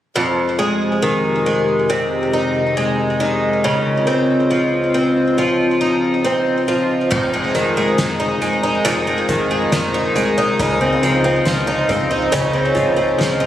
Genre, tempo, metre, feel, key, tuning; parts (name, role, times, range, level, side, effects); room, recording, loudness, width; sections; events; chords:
dream pop; 69 BPM; 4/4; straight; F minor; A4 = 440 Hz
warbly tape-like pad; sustained chords; 0.2-13.5 s; Db2 to F5; -21 LUFS; equal; chorus, built-in reverb
picked twelve-string acoustic guitar; arpeggios; 0.2-13.5 s; F2 to Eb4; -16 LUFS; equal; wide subtle chorus, ping-pong delay
chorused synth bass; bass; 7.1-13.5 s; F1 to Db2; -29 LUFS; equal
soft-mallet drum kit; drums; 7.1-13.4 s; crash cymbal, hi-hat, kick drum, snare drum; -25 LUFS; equal
moderate huge ambient reverb, RT60 8.2 s; recorded on a phone in the room, studio reverb; -15 LUFS; side -11 dB against mid
0.2-7.1 A section; 7.1-13.5 B section
0.2 Fm7; 3.6 Dbmaj9; 7.1 Fm7; 10.6 Dbmaj9